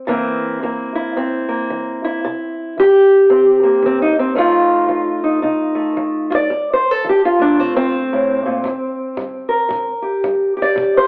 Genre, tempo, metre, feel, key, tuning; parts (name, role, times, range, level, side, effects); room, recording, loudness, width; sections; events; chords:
acoustic country blues, solo or duo; 112 BPM; 4/4; swing 62% on 8ths; C mixolydian; A4 = 440 Hz
fingerpicked steel-string acoustic guitar; melody; 0.0-11.1 s; F2 to D5; -13 LUFS; equal; cassette tape
kick drum; drums; 8.6-10.9 s; -36 LUFS; equal; cassette tape
moderate lush hall reverb, RT60 1.5 s, studio ambience; home recording on cassette, telephone sound; -13 LUFS; side -34 dB against mid
0.0-11.1 A section
0.1 C7; 4.4 F7; 8.6 C5